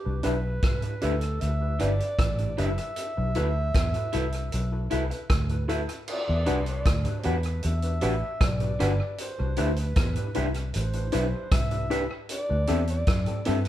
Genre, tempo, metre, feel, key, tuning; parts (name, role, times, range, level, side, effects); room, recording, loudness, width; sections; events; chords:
lovers rock reggae; 77 BPM; 4/4; straight; E minor; A4 = 439 Hz
warm clarinet; melody; 0.0-13.7 s; G4 to E5; -34 LUFS; equal
vintage muted fingered electric bass; bass; 0.1-13.7 s; F#1 to G2; -27 LUFS; equal
tine electric piano; accompaniment; 0.2-13.6 s; C4 to B4; -33 LUFS; left 4 dB; overdrive, fast stereo tremolo, dub echo
electric guitar through a small old amp; stabs; 0.2-13.6 s; D4 to F#5; -33 LUFS; right 4 dB
vintage drum kit; drums; 0.2-13.7 s; crash cymbal, hi-hat, kick drum, rim click; -28 LUFS; equal
moderate large studio reverb, RT60 1.0 s; band playing live in one room; -24 LUFS; side -12 dB against mid
0.0-6.1 A section; 6.1-13.7 B section
0.0 Cmaj9 (rootless); 3.0 B7sus4; 6.1 Em9; 9.2 Cmaj7; 12.3 D9sus4